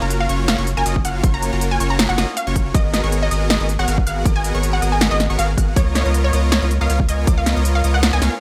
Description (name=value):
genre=future bass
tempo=159 BPM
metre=4/4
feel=swing 54% on 16ths, half-time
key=F# major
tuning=A4 = 435 Hz
part: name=unison pluck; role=melody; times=0.0-8.3 s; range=C#5 to A#5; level=-27 LUFS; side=equal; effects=sidechain pumping, dub echo
part: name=unison pluck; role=arpeggios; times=0.0-8.3 s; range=A#5 to G#6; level=-34 LUFS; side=equal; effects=sidechain pumping, digital delay
part: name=supersaw chords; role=riff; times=0.0-8.3 s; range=A#3 to G#5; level=-26 LUFS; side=equal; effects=sidechain pumping
part: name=saturated sub bass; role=bass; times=0.0-8.3 s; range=F#1 to C#2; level=-22 LUFS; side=equal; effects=sidechain pumping
part: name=big-room dance drum kit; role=drums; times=0.1-8.3 s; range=hi-hat, snare drum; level=-24 LUFS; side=equal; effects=none
part: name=electronic kick drum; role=drums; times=1.0-7.4 s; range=none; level=-19 LUFS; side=equal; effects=none
room=light reverb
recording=none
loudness=-18 LUFS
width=mono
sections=0.0-8.4 A section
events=none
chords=0.0 F#maj7; 2.7 G#m9; 5.8 C#13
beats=0.10 0.48 0.86 | 1.24 1.61 1.99 2.37 | 2.75 3.12 3.50 3.88 | 4.25 4.63 5.01 5.39 | 5.76 6.14 6.52 6.90 | 7.27 7.65 8.03